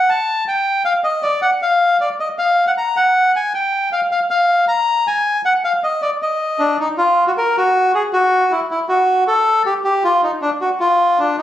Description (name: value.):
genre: tango.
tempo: 157 BPM.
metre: 3/4.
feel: rubato.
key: unclear.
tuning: A4 = 440 Hz.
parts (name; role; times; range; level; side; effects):
bandoneon; solo; 0.0-11.4 s; D4 to Bb5; -14 LUFS; left 1 dB; none.
room: moderate studio reverb, RT60 0.5 s.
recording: recorded on a phone in the room, club reverb, vinyl crackle.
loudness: -14 LUFS.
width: side -12 dB against mid.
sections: 0.0-7.0 A section; 7.0-11.4 A section.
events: none.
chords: none.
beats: | 0.08 0.46 0.84 | 1.23 1.61 1.99 | 2.38 2.76 3.15 | 3.53 3.91 4.29 | 4.67 5.05 5.43 | 5.81 6.20 6.58 | 6.97 7.36 7.74 | 8.12 8.51 8.89 | 9.27 9.65 10.03 | 10.41 10.79 11.17.